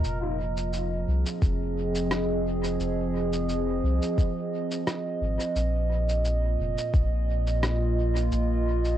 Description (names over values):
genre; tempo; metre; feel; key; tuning
ambient dub; 87 BPM; 4/4; swing 54% on 16ths; F minor; A4 = 440 Hz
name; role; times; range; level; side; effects
warbly tape-like pad; sustained chords; 0.0-9.0 s; Bb2 to Eb5; -28 LUFS; right 2 dB; chorus, built-in reverb, cassette tape
soft dub sub bass; bass; 0.0-9.0 s; F1 to C2; -27 LUFS; equal; tube saturation
electronic cabasa and rim click; drums; 0.0-9.0 s; none; -34 LUFS; equal; studio ambience, cassette tape, dub echo
electronic kick drum; drums; 1.4-7.1 s; none; -23 LUFS; equal; studio ambience, cassette tape
room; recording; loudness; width
little or no reverb; home recording on cassette; -24 LUFS; side -12 dB against mid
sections
0.0-9.0 A section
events
none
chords
0.0 Fm7